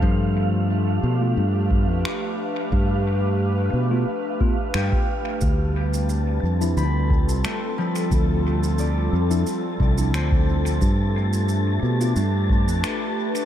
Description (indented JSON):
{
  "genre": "ambient dub",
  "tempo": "89 BPM",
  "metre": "4/4",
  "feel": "swing 54% on 16ths",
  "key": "unclear",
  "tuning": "A4 = 441 Hz",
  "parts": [
    { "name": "airy breathy pad", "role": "sustained chords", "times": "0.0-13.4 s", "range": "G3 to B4", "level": "-27 LUFS", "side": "equal", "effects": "chorus" },
    { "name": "concert harp", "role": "arpeggios", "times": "0.0-12.1 s", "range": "F3 to B5", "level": "-32 LUFS", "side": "left 3 dB", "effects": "dub echo" },
    { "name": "fingered electric bass", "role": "bass", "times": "0.0-12.8 s", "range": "C2 to B2", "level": "-21 LUFS", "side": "equal", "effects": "tube saturation" },
    { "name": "electronic kick drum", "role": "drums", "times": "0.0-12.6 s", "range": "none", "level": "-22 LUFS", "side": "equal", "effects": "none" },
    { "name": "wind-like tuned noise texture", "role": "texture", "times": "0.0-13.4 s", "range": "F5 to A5", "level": "-33 LUFS", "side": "right 1 dB", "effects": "built-in reverb" },
    { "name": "mellow tine electric piano", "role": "stabs", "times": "1.2-12.2 s", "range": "F3 to F4", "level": "-31 LUFS", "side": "left 1 dB", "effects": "medium stereo tremolo, low-pass filter, dub echo" },
    { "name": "finger snaps and shaker", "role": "drums", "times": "2.1-13.4 s", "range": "none", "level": "-34 LUFS", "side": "equal", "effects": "dub echo" }
  ],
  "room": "small room reverb",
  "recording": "none",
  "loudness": "-19 LUFS",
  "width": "side -10 dB against mid",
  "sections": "0.0-13.4 A section",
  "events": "filter sweep on tine electric piano 0.0-13.4",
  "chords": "0.0 G7; 5.4 Dm; 10.8 G7"
}